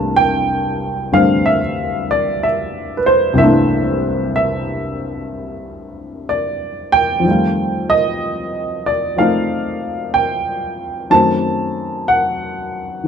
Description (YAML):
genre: solo jazz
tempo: 62 BPM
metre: 4/4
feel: swing 66% on 8ths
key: C mixolydian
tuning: A4 = 440 Hz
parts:
  - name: dark baby grand piano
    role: solo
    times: 0.0-13.1 s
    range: C2 to A5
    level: -15 LUFS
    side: equal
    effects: none
room: moderate studio reverb, RT60 0.6 s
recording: none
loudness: -15 LUFS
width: side -7 dB against mid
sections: 0.0-13.1 A section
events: none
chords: 0.0 C13; 7.2 F9; 11.1 F#dim7